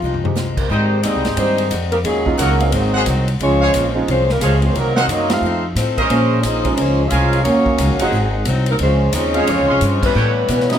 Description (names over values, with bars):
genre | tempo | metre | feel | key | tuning
jazz, big band swing | 178 BPM | 4/4 | swing 63% on 8ths | Ab major | A4 = 440 Hz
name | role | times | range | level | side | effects
clear saxophone section | melody | 0.0-10.8 s | F3 to F5 | -21 LUFS | left 2 dB | none
clear trombone section | second line | 0.0-10.8 s | Ab2 to G4 | -22 LUFS | right 2 dB | none
picked acoustic archtop guitar | accompaniment | 0.0-10.7 s | Ab2 to C5 | -26 LUFS | left 4 dB | none
upright bass | bass | 0.0-10.8 s | Gb1 to B2 | -18 LUFS | equal | none
swinging big-band drum kit | drums | 0.1-10.8 s | crash cymbal, hi-hat, kick drum, ride cymbal, snare drum, toms | -25 LUFS | left 1 dB | none
warm baby grand piano | accompaniment | 0.2-10.8 s | Gb3 to F5 | -24 LUFS | right 4 dB | none
mellow trumpet section | stabs | 0.7-10.3 s | Db4 to C6 | -22 LUFS | right 1 dB | none
room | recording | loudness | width
moderate large studio reverb, RT60 1.4 s | none | -14 LUFS | side -9 dB against mid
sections
0.7-10.8 A section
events
drum fill 0.0-0.4; band accent 5.3, 10.0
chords
0.0 Fm9; 0.7 Abmaj7; 2.0 Ebm7; 2.7 Ab7; 3.4 Dbmaj7; 4.8 Cm7b5; 5.4 F7; 6.1 Bbm9; 7.4 Ebm7; 8.1 Ab7; 8.8 Dbmaj7; 10.1 A9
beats
0.02 0.36 | 0.70 1.03 1.37 1.71 | 2.05 2.39 2.72 3.06 | 3.40 3.74 4.08 4.41 | 4.75 5.09 5.42 5.76 | 6.10 6.44 6.77 7.11 | 7.45 7.79 8.12 8.46 | 8.80 9.14 9.47 9.81 | 10.15 10.49